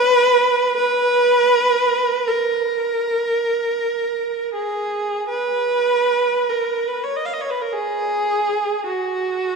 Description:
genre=classical, free, expressive piece for unaccompanied viola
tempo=32-54 BPM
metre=3/4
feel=rubato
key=unclear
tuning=A4 = 440 Hz
part: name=rich viola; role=solo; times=0.0-9.6 s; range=Gb4 to F5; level=-17 LUFS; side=right 2 dB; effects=none
room=wet church reverb, RT60 3.0 s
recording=heard from further back in the room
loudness=-17 LUFS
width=side -4 dB against mid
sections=0.0-5.3 A section; 5.3-9.6 B section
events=none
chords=none

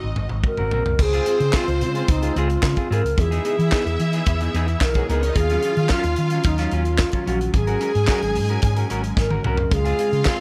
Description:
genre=disco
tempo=110 BPM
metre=4/4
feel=straight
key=Db major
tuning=A4 = 439 Hz
part: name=clear studio string section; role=second line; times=0.0-10.4 s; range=Gb3 to Ab5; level=-33 LUFS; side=equal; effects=none
part: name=clean electric guitar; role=accompaniment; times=0.0-10.4 s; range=Gb3 to Bb4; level=-32 LUFS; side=equal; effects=spring reverb
part: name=hollow soft pad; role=sustained chords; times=0.0-10.4 s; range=Db3 to G#4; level=-34 LUFS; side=equal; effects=ensemble chorus
part: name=hollow-body short-scale fingered electric bass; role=bass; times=0.0-10.2 s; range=Ab1 to E3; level=-25 LUFS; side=equal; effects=none
part: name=tight funk drum kit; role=drums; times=0.2-10.4 s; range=crash cymbal, handclaps, hi-hat, kick drum, snare drum, toms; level=-25 LUFS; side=equal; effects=none
part: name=reedy wooden-headed alto flute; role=melody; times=0.5-10.4 s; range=Eb4 to Bb4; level=-26 LUFS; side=equal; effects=none
room=small room ambience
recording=none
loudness=-21 LUFS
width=mono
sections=1.0-10.4 A section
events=drum fill 0.0-1.0, 9.2-9.7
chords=0.0 Ab9; 1.0 Dbmaj7; 3.2 Emaj7; 5.4 Ebm9; 7.5 Ab9sus4; 9.7 Dbmaj7

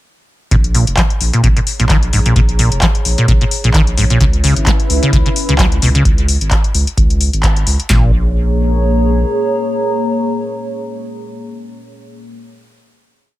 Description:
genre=acid house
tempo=130 BPM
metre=4/4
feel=swing 55% on 16ths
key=unclear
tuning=A4 = 440 Hz
part: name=acid bass, saw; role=riff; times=0.5-8.1 s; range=Ab2 to Ab3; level=-15 LUFS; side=equal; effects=tube saturation, analog chorus
part: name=saturated sub bass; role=bass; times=0.5-9.2 s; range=F1 to Db2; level=-16 LUFS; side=equal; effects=tube saturation, sidechain pumping
part: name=booming analog drum machine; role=drums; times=0.5-8.0 s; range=handclaps, kick drum, snare drum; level=-14 LUFS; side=equal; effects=overdrive
part: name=electro analog drum machine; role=drums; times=0.5-7.9 s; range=handclaps, hi-hat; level=-19 LUFS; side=left 2 dB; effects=none
part: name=warbly tape-like pad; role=texture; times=1.3-12.4 s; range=Fb4 to Cb6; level=-23 LUFS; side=right 1 dB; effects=chorus, built-in reverb, sidechain pumping
part: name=dark analog pad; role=sustained chords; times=4.6-12.4 s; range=Bb3 to Fb5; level=-21 LUFS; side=left 2 dB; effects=chorus, sidechain pumping
room=light reverb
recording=none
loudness=-11 LUFS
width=side -16 dB against mid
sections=0.5-7.9 groove; 7.9-11.6 final chord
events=fade-in on ambient pad 0.5-6.1; band accent 7.4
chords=0.5 Bbm7; 4.2 Dbm7; 7.9 Bbm7

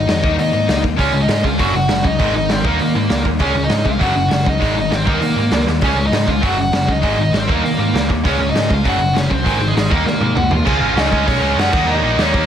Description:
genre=punk rock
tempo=198 BPM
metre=4/4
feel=straight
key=unclear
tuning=A4 = 442 Hz
part: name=nasal lead guitar with a parked wah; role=melody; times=0.0-12.5 s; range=G#3 to F#5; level=-20 LUFS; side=equal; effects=overdrive, digital delay
part: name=tight distorted guitar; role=riff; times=0.0-12.5 s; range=F#2 to D#4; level=-22 LUFS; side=left 11 dB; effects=distortion
part: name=overdriven picked electric bass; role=bass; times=0.0-12.5 s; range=F#1 to D#3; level=-20 LUFS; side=right 1 dB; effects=none
part: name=raw garage drum kit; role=drums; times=0.1-12.4 s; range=crash cymbal, hi-hat, kick drum, snare drum, toms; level=-20 LUFS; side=equal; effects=none
part: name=distorted electric guitar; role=riff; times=1.0-12.5 s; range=F#2 to D#4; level=-21 LUFS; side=right 12 dB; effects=distortion
part: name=high-gain distorted guitar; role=riff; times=10.7-12.5 s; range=C#3 to D#4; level=-23 LUFS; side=left 1 dB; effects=distortion
room=light reverb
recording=none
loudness=-14 LUFS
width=side -9 dB against mid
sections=0.0-10.7 A section; 10.7-12.5 B section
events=drum fill 5.7, 10.1-10.7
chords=0.2 D#5; 1.0 C#; 1.6 F#5; 2.2 G#; 2.6 D#5; 3.4 C#; 4.0 F#5; 4.6 G#; 5.1 D#5; 5.8 C#; 6.4 F#5; 7.0 G#; 7.5 D#5; 8.2 C#; 8.8 F#5; 9.5 G#; 9.9 D#m; 10.7 C#; 11.7 D#m

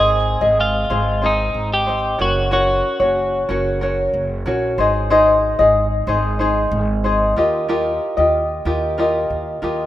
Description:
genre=acoustic pop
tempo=93 BPM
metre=4/4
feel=straight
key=Ab major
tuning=A4 = 439 Hz
part: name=twelve-string electric guitar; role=melody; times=0.0-4.7 s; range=Eb4 to Ab4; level=-21 LUFS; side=right 1 dB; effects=tape echo
part: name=tenor ukulele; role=accompaniment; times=0.0-9.9 s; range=C4 to Eb5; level=-17 LUFS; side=left 1 dB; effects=none
part: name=upright bass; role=bass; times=0.0-9.9 s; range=Gb1 to Eb2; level=-23 LUFS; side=right 1 dB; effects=none
room=wet lush hall reverb, RT60 2.3 s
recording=rough home demo mix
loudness=-15 LUFS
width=side -13 dB against mid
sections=0.0-9.9 A section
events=none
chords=0.0 Ab; 2.2 Gb; 4.8 Ab; 7.4 Ebadd9

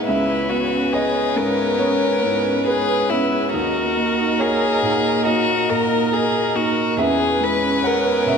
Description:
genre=neoclassical piano and strings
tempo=69 BPM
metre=4/4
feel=rubato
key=unclear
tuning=A4 = 440 Hz
part: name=warm violin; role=melody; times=0.0-8.4 s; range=E4 to B4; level=-21 LUFS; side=left 4 dB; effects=none
part: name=dark upright piano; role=accompaniment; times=0.0-8.4 s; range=C#2 to F#5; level=-22 LUFS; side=right 1 dB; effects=none
part: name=warm viola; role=accompaniment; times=0.0-8.4 s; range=A#4 to B4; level=-24 LUFS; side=right 3 dB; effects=none
part: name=warm chamber string section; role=sustained chords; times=0.0-8.4 s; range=A#3 to D#5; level=-28 LUFS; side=equal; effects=none
part: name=marimba with medium hard mallets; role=arpeggios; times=0.1-8.4 s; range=C#4 to D#5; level=-25 LUFS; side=right 1 dB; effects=none
room=wet concert hall reverb, RT60 2.4 s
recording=recorded in a church or concert hall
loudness=-17 LUFS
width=side -6 dB against mid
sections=0.0-8.4 A section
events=none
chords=0.1 C#m7; 3.5 D#m; 7.0 C#m7/E

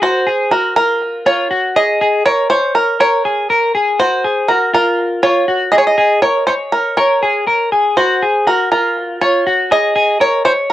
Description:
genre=indie pop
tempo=121 BPM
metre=4/4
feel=straight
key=unclear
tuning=A4 = 439 Hz
part: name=bluegrass banjo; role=melody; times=0.0-10.7 s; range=Bb4 to Eb5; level=-14 LUFS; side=right 2 dB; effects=cassette tape
part: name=semi-hollow electric guitar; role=arpeggios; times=0.0-10.7 s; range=F4 to Db5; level=-15 LUFS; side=left 2 dB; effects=lush chorus, cassette tape
room=moderate booth ambience, RT60 0.3 s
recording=home recording on cassette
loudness=-12 LUFS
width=side -13 dB against mid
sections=0.0-10.7 A section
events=none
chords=0.0 Gbmaj7; 1.8 Absus4; 4.0 Gbmaj9#11; 6.0 Bbm7; 8.0 Gbmaj7; 9.7 Absus4

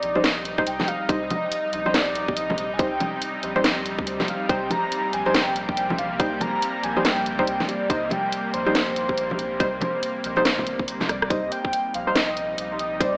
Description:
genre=deep dubstep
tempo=141 BPM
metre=4/4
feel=swing 61% on 16ths, half-time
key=C minor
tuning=A4 = 440 Hz
part: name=breathy flute-like synth lead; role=melody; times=0.0-13.2 s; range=C5 to Bb5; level=-30 LUFS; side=equal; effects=analog chorus, dub echo
part: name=bowed-like drone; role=sustained chords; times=0.0-13.2 s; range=C3 to Eb4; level=-32 LUFS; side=equal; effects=built-in reverb
part: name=soft dub sub bass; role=bass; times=0.0-13.2 s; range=G1 to D2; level=-42 LUFS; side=equal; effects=none
part: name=garage drum kit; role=drums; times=0.0-13.1 s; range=hi-hat, rim click, snare drum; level=-27 LUFS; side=equal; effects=studio ambience
part: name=filtered dub chord stab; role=stabs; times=0.2-13.1 s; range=G3 to C5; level=-30 LUFS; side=equal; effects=chorus, cassette tape, dub echo
part: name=bongos and congas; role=percussion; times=0.2-11.2 s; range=none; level=-34 LUFS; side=equal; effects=none
part: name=electronic kick drum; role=drums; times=0.6-13.1 s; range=none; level=-29 LUFS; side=equal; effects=studio ambience
room=moderate lush hall reverb, RT60 1.8 s, digital ambience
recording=vinyl crackle, AM radio sound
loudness=-24 LUFS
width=mono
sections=0.0-11.3 A section; 11.3-13.2 A section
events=drop 0.0-11.3, 11.3-13.2; break 10.9-11.3; drum fill 11.1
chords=0.0 Cm

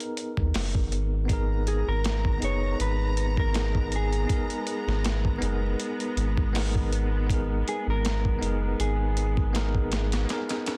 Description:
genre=trip hop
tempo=80 BPM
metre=4/4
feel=swing 55% on 16ths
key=G# minor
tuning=A4 = 440 Hz
part: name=bell-like tine electric piano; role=accompaniment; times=0.0-10.8 s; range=B3 to B4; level=-35 LUFS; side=equal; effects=tremolo
part: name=dusty soul sampler-style drum kit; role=drums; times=0.0-10.8 s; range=hi-hat, kick drum, snare drum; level=-31 LUFS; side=equal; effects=overdrive, vintage 12-bit sampler grit, small room ambience
part: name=soft dub sub bass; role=bass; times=0.4-10.3 s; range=F#1 to D#2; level=-29 LUFS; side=equal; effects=none
part: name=rich studio string section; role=sustained chords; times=1.3-10.8 s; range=G#3 to A#5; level=-40 LUFS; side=equal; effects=vintage 12-bit sampler grit
part: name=mellow electric guitar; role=melody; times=1.7-10.8 s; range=G#4 to C#5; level=-36 LUFS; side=equal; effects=dub echo
room=digital ambience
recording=dense, heavily limited modern master, vinyl crackle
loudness=-27 LUFS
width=mono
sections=0.0-10.8 A section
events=none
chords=0.0 G#madd9

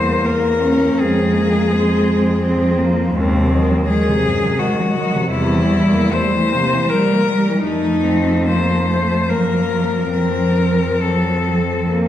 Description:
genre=classical, lyrical piece for cello ensemble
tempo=67-86 BPM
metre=3/4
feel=rubato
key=F minor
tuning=A4 = 440 Hz
part: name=rich cello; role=melody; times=0.0-11.9 s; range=C4 to C5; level=-19 LUFS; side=left 4 dB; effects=none
part: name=warm cello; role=second line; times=0.0-12.1 s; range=Gb2 to C4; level=-20 LUFS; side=right 2 dB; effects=none
part: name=warm cello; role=accompaniment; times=0.0-12.1 s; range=Gb3 to Db4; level=-21 LUFS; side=left 1 dB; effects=none
part: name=clear cello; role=bass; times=0.0-12.1 s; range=Eb2 to Gb2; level=-20 LUFS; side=equal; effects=none
room=wet recital hall reverb, RT60 1.6 s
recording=heard from further back in the room, vinyl crackle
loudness=-14 LUFS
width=side -11 dB against mid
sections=0.0-12.1 A section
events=none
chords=0.0 C7/E; 1.0 Fm; 3.1 Cdim/Eb; 5.3 C7/E; 7.6 F7; 9.3 Gbmaj7; 10.1 F

